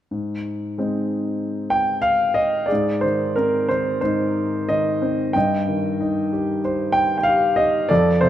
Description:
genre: classical, lyrical solo piano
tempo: 93 BPM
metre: 4/4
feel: rubato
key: Ab lydian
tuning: A4 = 440 Hz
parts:
  - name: dark grand piano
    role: solo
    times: 0.1-8.3 s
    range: F2 to G5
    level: -18 LUFS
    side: equal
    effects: none
room: moderate concert hall reverb, RT60 2.1 s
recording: none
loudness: -18 LUFS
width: side -11 dB against mid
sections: 0.1-2.7 A section; 2.7-8.3 B section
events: none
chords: 0.1 Ab; 5.4 Cm/G

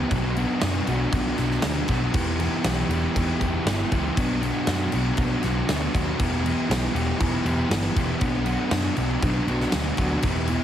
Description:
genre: quiet-loud alternative rock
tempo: 118 BPM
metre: 4/4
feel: straight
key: unclear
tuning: A4 = 440 Hz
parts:
  - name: thick fuzz guitar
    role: riff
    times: 0.0-10.6 s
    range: B2 to G4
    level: -24 LUFS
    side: equal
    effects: distortion
  - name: overdriven picked electric bass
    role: bass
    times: 0.1-10.6 s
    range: E1 to F#2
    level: -27 LUFS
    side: equal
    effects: none
  - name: huge arena drum kit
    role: drums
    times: 0.1-10.6 s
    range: crash cymbal, kick drum, snare drum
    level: -27 LUFS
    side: equal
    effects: none
room: light reverb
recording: heavily compressed radio sound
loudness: -21 LUFS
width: side -10 dB against mid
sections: 0.0-10.6 A section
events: none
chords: 0.1 Bm; 2.1 Em; 4.2 Bm; 6.2 Em; 8.2 Bm

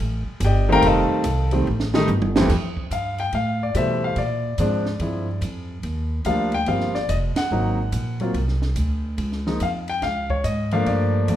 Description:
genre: jazz piano trio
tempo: 143 BPM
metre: 4/4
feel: swing 66% on 8ths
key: unclear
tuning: A4 = 440 Hz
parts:
  - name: upright bass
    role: bass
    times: 0.0-11.4 s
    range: F1 to B2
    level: -23 LUFS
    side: right 1 dB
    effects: none
  - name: warm concert grand piano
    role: melody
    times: 0.4-11.4 s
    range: F2 to Bb5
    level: -22 LUFS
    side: left 1 dB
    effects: none
  - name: compact cocktail drum kit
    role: drums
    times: 0.4-11.4 s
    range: crash cymbal, hi-hat, kick drum, ride cymbal, snare drum, toms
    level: -29 LUFS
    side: right 2 dB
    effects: none
room: moderate large studio reverb, RT60 1.1 s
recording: minimal, uncompressed stereo recording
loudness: -20 LUFS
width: side -11 dB against mid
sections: 0.0-2.5 A section; 2.5-11.4 B section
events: grand piano solo 0.0-2.5; drum fill 1.7-2.5; band accent 7.3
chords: 0.0 Ebmaj7#11; 0.8 F7; 2.5 Fmaj9; 4.2 Bb7; 5.8 Ebmaj9; 7.5 Ab7; 9.2 Dbadd9

